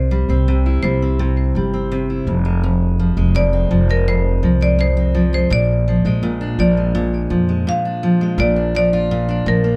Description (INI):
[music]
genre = acoustic pop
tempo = 83 BPM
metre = 4/4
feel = straight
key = unclear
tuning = A4 = 441 Hz
[part]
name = marimba with hard mallets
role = melody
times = 0.0-9.8 s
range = Bb4 to F5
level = -24 LUFS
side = equal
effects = delay
[part]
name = picked steel-string acoustic guitar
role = accompaniment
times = 0.0-9.8 s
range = F2 to F4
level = -21 LUFS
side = equal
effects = none
[part]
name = upright bass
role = bass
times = 0.0-9.8 s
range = F1 to F2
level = -20 LUFS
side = equal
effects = none
[sound]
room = light reverb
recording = dark, warm production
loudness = -17 LUFS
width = mono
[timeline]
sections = 0.0-8.4 A section; 8.4-9.8 B section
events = none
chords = 0.0 C; 2.3 Fm; 5.5 Bb7; 8.4 Bb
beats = 0.47 1.19 1.91 | 2.63 3.35 4.07 4.79 | 5.51 6.23 6.95 7.66 | 8.38 9.10